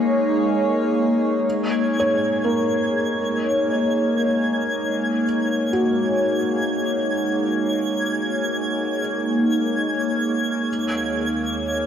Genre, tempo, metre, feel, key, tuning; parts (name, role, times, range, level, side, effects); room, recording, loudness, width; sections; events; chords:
ambient; free time; Eb minor; A4 = 440 Hz
evolving wavetable pad; sustained chords; 0.0-11.9 s; Eb2 to Db5; -20 LUFS; equal; chorus, built-in reverb, phaser
twinkling granular texture; texture; 1.5-11.9 s; Ab6; -28 LUFS; equal; built-in reverb
felt-muted upright piano; arpeggios; 2.0-10.7 s; Bb3 to Db5; -27 LUFS; equal; diffuse ambient delay
wet cathedral reverb, RT60 6.4 s; -19 LUFS; side -8 dB against mid
0.0-1.4 A section; 1.4-11.9 B section
0.0 Eb7(no3); 1.4 Ebm7; 10.7 Eb7sus4